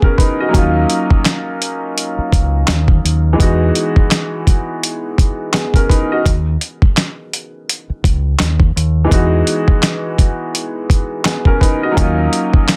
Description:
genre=hip hop, boom-bap hip-hop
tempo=84 BPM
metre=4/4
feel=swing 57% on 16ths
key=unclear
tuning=A4 = 441 Hz
part: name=clear upright piano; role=accompaniment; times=0.0-12.8 s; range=E3 to D#5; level=-20 LUFS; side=equal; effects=high-pass filter, low-pass filter, plate reverb
part: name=dusty soul sampler-style drum kit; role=drums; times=0.0-12.8 s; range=handclaps, hi-hat, kick drum, snare drum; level=-15 LUFS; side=equal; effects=none
part: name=deep dub fingered electric bass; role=bass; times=0.5-12.3 s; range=Db2 to E2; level=-17 LUFS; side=equal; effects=none
room=light reverb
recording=dense, heavily limited modern master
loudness=-15 LUFS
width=mono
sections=0.0-12.8 A section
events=none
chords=0.0 Emaj9; 0.5 Ebm9; 3.4 Emaj9; 6.3 Dbsus2; 9.1 Emaj9; 12.0 Ebm9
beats=| 0.54 1.26 1.97 2.69 | 3.40 4.12 4.83 5.54 | 6.26 6.97 7.69 8.40 | 9.12 9.83 10.54 11.26 | 11.97 12.69

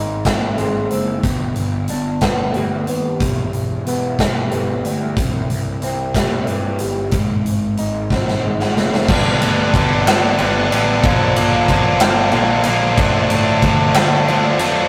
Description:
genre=quiet-loud alternative rock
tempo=61 BPM (dotted quarters)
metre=6/8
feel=straight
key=unclear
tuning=A4 = 443 Hz
part: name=electric guitar through a small old amp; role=arpeggios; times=0.0-9.1 s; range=E2 to Eb4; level=-25 LUFS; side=equal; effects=phaser
part: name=fuzz picked electric bass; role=bass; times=0.0-14.9 s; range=E1 to D3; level=-25 LUFS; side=equal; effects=overdrive
part: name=big rock drum kit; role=drums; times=0.2-14.7 s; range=crash cymbal, hi-hat, kick drum, ride cymbal, snare drum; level=-20 LUFS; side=equal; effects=none
part: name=tight distorted guitar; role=riff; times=9.1-14.9 s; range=G2 to D4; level=-18 LUFS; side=equal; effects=distortion
room=moderate booth ambience, RT60 0.2 s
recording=rough rehearsal-room recording, tube saturation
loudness=-17 LUFS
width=mono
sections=0.0-9.1 A section; 9.1-14.9 B section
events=drum fill 8.1-9.1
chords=0.0 Ab; 1.2 G; 3.2 Em; 5.2 C; 7.1 Ab; 9.1 G; 11.0 Bb; 13.0 Dm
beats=0.26 | 1.24 2.22 | 3.20 4.18 | 5.16 6.14 | 7.12 8.10 | 9.08 10.05 | 11.03 12.00 | 12.98 13.95

